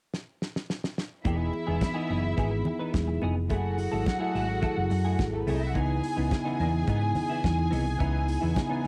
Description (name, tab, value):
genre	disco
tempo	107 BPM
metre	4/4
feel	straight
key	unclear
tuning	A4 = 440 Hz
part	damped 70s drum kit	drums	0.1-8.9 s	hi-hat, kick drum, snare drum	-33 LUFS	equal	none
part	rich studio string section	second line	1.2-8.9 s	A3 to G#5	-36 LUFS	equal	none
part	bell-like tine electric piano	accompaniment	1.2-8.9 s	C#3 to A4	-34 LUFS	equal	phaser
part	semi-hollow electric guitar	accompaniment	1.2-8.9 s	E3 to B4	-39 LUFS	equal	ensemble chorus
part	congas	percussion	1.2-8.7 s	none	-40 LUFS	equal	none
part	hollow-body short-scale fingered electric bass	bass	1.3-8.5 s	E1 to G#2	-31 LUFS	equal	none
room	light reverb, studio reverb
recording	home recording on cassette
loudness	-28 LUFS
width	mono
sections	0.0-1.3 A section; 1.3-8.9 B section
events	drum fill 0.1-1.3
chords	0.0 N.C.; 1.3 Emaj7; 3.5 F#m9; 5.8 C#m9